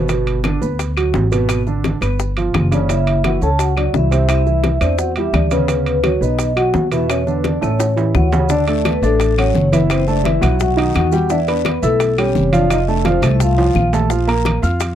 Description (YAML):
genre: Afro-Cuban jazz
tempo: 171 BPM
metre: 4/4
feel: straight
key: D major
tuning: A4 = 439 Hz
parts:
  - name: warm upright piano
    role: accompaniment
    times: 0.0-14.9 s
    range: B2 to F6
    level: -20 LUFS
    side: right 5 dB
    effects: none
  - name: upright bass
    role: bass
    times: 0.0-14.9 s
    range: F1 to F2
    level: -18 LUFS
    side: equal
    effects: none
  - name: bongos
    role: percussion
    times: 0.1-14.9 s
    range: none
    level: -24 LUFS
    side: left 10 dB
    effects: none
  - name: congas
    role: percussion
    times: 0.1-14.9 s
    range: none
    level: -23 LUFS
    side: left 1 dB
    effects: none
  - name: maracas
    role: percussion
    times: 0.1-14.9 s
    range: none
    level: -36 LUFS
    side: right 21 dB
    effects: none
  - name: timbales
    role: percussion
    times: 0.1-14.9 s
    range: none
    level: -27 LUFS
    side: right 5 dB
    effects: none
  - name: claves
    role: percussion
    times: 0.4-14.6 s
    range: none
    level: -32 LUFS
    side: left 21 dB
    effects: none
  - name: vibraphone with soft mallets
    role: melody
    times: 2.7-13.9 s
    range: A4 to A5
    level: -21 LUFS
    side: equal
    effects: none
  - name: breathy trombone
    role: second line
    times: 2.7-13.9 s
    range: A3 to A4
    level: -23 LUFS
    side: left 15 dB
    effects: none
  - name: guiro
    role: percussion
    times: 8.5-14.9 s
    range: none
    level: -38 LUFS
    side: left 20 dB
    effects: none
room: little or no reverb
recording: dry, close 1970s-style studio recording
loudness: -14 LUFS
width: side -10 dB against mid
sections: 0.0-8.5 A section; 8.5-14.9 B section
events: drum fill 7.6-8.5, 13.6-14.1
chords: 0.1 Gmaj7; 1.5 G#dim; 2.2 G7; 2.9 F#5; 4.3 Cadd9; 5.7 Dmaj7; 6.4 B5; 7.1 E5; 7.8 A6; 8.5 Dmaj9; 9.9 D13/F#; 10.6 B; 11.3 Em; 12.7 F; 14.1 Bb5